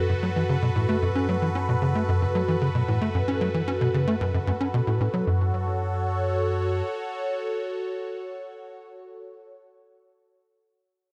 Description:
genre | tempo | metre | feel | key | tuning
ambient, sequencer-driven space music | 113 BPM | 4/4 | straight | F# minor | A4 = 440 Hz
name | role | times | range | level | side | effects
phased analog pad | sustained chords | 0.0-9.6 s | F#4 to C#5 | -31 LUFS | equal | phaser, chorus
tight sequencer bass | riff | 0.0-5.5 s | F#2 to C#4 | -27 LUFS | equal | ensemble chorus, delay
warm sub bass | bass | 0.0-6.8 s | F#2 | -32 LUFS | equal | none
room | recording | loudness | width
moderate plate reverb, RT60 3.0 s | none | -25 LUFS | mono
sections
0.0-5.3 A section; 5.3-9.5 B section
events
none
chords
0.0 F#m

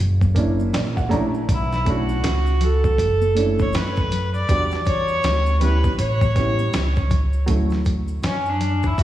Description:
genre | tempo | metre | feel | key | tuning
hip hop, jazz-hop | 80 BPM | 4/4 | swing 61% on 16ths | D major | A4 = 439 Hz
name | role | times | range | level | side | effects
upright bass | bass | 0.0-9.0 s | F#1 to F#2 | -21 LUFS | equal | none
maracas and congas | percussion | 0.0-9.0 s | none | -34 LUFS | left 4 dB | none
dusty soul sampler-style drum kit | drums | 0.2-9.0 s | hi-hat, kick drum, snare drum | -23 LUFS | equal | overdrive
dark upright piano | accompaniment | 0.3-7.8 s | F#3 to A#5 | -26 LUFS | right 2 dB | none
rich viola | melody | 1.5-9.0 s | C#4 to D5 | -23 LUFS | equal | tape echo
room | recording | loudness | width
moderate lush hall reverb, RT60 1.9 s | dreamy mix soaked in reverb, small room ambience | -18 LUFS | side -13 dB against mid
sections
0.0-7.5 A section; 7.5-9.0 B section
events
upright piano fill 0.4-1.5; viola solo 7.5-9.0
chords
0.0 F#7b13; 1.5 Bm11; 4.5 Em9; 6.0 A7; 7.5 Dmaj7

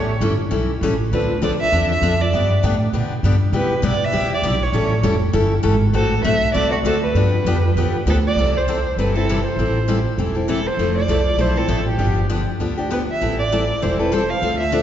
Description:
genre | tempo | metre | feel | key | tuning
acoustic string swing (jazz manouche) | 198 BPM | 4/4 | swing 58% on 8ths | C major | A4 = 441 Hz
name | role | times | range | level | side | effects
warm violin | melody | 0.0-14.8 s | F#4 to F5 | -22 LUFS | right 2 dB | none
picked steel-string acoustic guitar | accompaniment | 0.0-14.8 s | C3 to A4 | -21 LUFS | left 2 dB | none
upright bass | bass | 0.0-14.8 s | E1 to C3 | -20 LUFS | equal | none
room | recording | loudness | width
wet concert hall reverb, RT60 2.2 s | recorded in a church or concert hall, nothing above 7.6 kHz | -16 LUFS | side -10 dB against mid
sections
0.0-8.4 A section; 8.4-14.8 B section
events
none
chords
0.0 A7; 1.1 Dm7; 2.3 G; 3.5 Cmaj7; 4.7 A7; 5.9 D7; 7.2 G7; 8.4 C6; 9.6 Am7; 10.8 Fmaj7; 12.0 G7; 13.2 Am7

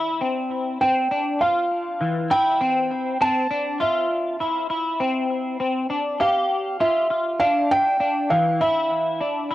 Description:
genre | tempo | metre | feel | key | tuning
dream pop | 100 BPM | 4/4 | straight | F major | A4 = 436 Hz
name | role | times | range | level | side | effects
semi-hollow electric guitar | arpeggios | 0.0-9.5 s | E3 to G4 | -23 LUFS | left 2 dB | analog chorus, analog delay
felt-muted upright piano | melody | 0.8-9.5 s | E5 to A5 | -21 LUFS | right 1 dB | analog delay
room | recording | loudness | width
light reverb, small room reverb | dry, gritty hardware recording, cassette tape | -19 LUFS | side -15 dB against mid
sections
0.0-9.5 A section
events
none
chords
0.0 C; 1.4 Fmaj7(no3); 6.2 G5; 8.6 N.C.

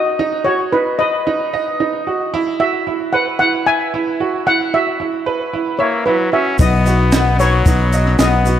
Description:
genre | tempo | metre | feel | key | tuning
indie folk with a building arrangement | 113 BPM | 4/4 | straight | B major | A4 = 440 Hz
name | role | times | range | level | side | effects
steel pan | melody | 0.0-8.6 s | B4 to G#5 | -18 LUFS | left 1 dB | slapback echo
clear upright piano | arpeggios | 0.0-8.6 s | D#4 to E5 | -19 LUFS | right 5 dB | slapback echo
warm trumpet | second line | 5.8-8.6 s | F#3 to C#4 | -20 LUFS | left 3 dB | slapback echo
dark baby grand piano | accompaniment | 6.6-8.6 s | B1 to D#5 | -27 LUFS | left 5 dB | none
picked twelve-string acoustic guitar | accompaniment | 6.6-8.6 s | B2 to B4 | -23 LUFS | left 6 dB | slapback echo
fingered electric bass | bass | 6.6-8.6 s | B1 | -15 LUFS | left 1 dB | none
compact cocktail drum kit | drums | 6.6-8.6 s | hi-hat, kick drum, snare drum | -18 LUFS | equal | none
tube shaker | percussion | 6.6-8.6 s | none | -32 LUFS | right 5 dB | none
group handclap | percussion | 7.1-8.3 s | none | -28 LUFS | right 3 dB | none
room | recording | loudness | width
moderate lush hall reverb, RT60 2.7 s | big arena sound | -14 LUFS | side -10 dB against mid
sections
0.0-8.6 A section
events
none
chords
0.0 B; 2.3 Esus2; 6.6 B

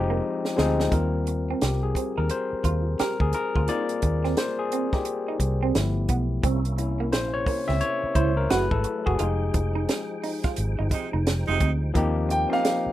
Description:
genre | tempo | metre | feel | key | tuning
R&B, neo-soul | 87 BPM | 4/4 | swing 62% on 16ths | Eb major | A4 = 440 Hz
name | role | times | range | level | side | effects
warm grand piano | melody | 0.0-0.5, 12.3-12.9 s | Eb5 to G5 | -25 LUFS | right 1 dB | none
overdriven tine electric piano | accompaniment | 0.0-12.9 s | F3 to E5 | -27 LUFS | left 4 dB | none
vintage muted fingered electric bass | bass | 0.0-12.9 s | F1 to Eb2 | -25 LUFS | equal | none
electric guitar through a small old amp | second line | 0.1-12.7 s | Bb3 to G4 | -30 LUFS | right 7 dB | phaser
compact cocktail drum kit | drums | 0.5-12.8 s | hi-hat, kick drum, snare drum | -27 LUFS | right 1 dB | none
percussive tonewheel organ | sustained chords | 6.4-11.9 s | C3 to G5 | -37 LUFS | right 1 dB | slow rotary speaker, overdrive, chorus vibrato
edgy saxophone section | stabs | 10.9-11.7 s | C3 to Eb4 | -26 LUFS | right 6 dB | none
room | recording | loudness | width
little or no reverb | rough home demo mix | -22 LUFS | side -14 dB against mid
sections
0.9-12.0 A section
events
drum fill 0.0-0.9; tine electric piano solo 0.9-12.0; band accent 9.2-12.0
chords
0.0 Fm9; 0.9 Eb6; 5.7 G13; 6.4 C7b9; 8.5 Gbm9; 9.2 Fm9; 12.0 Eb6

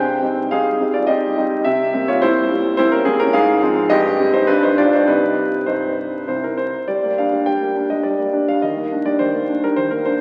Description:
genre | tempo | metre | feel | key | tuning
classical-period piano sonatina | 104 BPM | 3/4 | rubato | C minor, G minor from 6.9 s | A4 = 440 Hz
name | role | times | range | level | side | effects
clear concert grand piano | solo | 0.0-10.2 s | C2 to G5 | -18 LUFS | equal | none
room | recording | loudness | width
wet concert hall reverb, RT60 2.2 s | very old 78 rpm record, vinyl crackle | -18 LUFS | mono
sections
0.0-6.9 A section; 6.9-10.2 B section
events
none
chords
0.0 Cm; 1.7 C7; 3.3 Fm/Ab; 3.9 Cm/G; 4.5 G5; 5.1 Cm; 6.9 Gm; 8.6 Ebmaj7

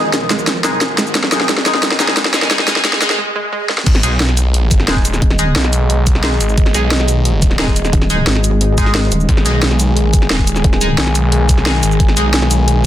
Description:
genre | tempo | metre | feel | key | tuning
dark technical drum and bass | 177 BPM | 4/4 | straight | G# minor | A4 = 440 Hz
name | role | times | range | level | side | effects
dark analog pad | sustained chords | 0.0-12.9 s | D#3 to G#5 | -21 LUFS | equal | chorus, sidechain pumping
snarling distorted saw bass | bass | 0.0-12.9 s | D#1 to B1 | -16 LUFS | equal | distortion, tube saturation, sidechain pumping
riser and swell | sound effects | 0.0-3.9 s | none | -25 LUFS | right 1 dB | none
wide unison pluck | arpeggios | 0.1-3.9 s | G#3 to G#4 | -25 LUFS | right 2 dB | vintage 12-bit sampler grit, sidechain pumping, dub echo
drum and bass drum kit | drums | 0.1-12.7 s | cabasa, crash cymbal, hi-hat, snare drum | -16 LUFS | equal | none
electronic kick drum | drums | 0.1-12.1 s | none | -14 LUFS | equal | high-pass filter on kick, high-pass filter on room
band-passed chord stab | stabs | 0.6-12.2 s | G#3 to G#4 | -21 LUFS | left 1 dB | phaser, wide subtle chorus, dub echo
pulsing pluck wobble bass | bass | 5.2-5.5, 7.9-11.0 s | D#1 to G#1 | -15 LUFS | equal | chorus
room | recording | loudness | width
light reverb | dense, heavily limited modern master, high-pass filter | -11 LUFS | side -12 dB against mid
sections
0.0-3.9 A section; 3.9-12.9 B section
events
build-up 0.0-3.9; drum fill 0.0-3.2, 3.7; riser 0.0-3.2; filter sweep on synth arpeggio sound 0.0-3.9; filter sweep on synth stab 0.0-3.9; filter sweep 0.0-3.9; break 3.2-3.9; swell 3.2-3.9; drop 3.9-12.9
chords
0.0 G#5

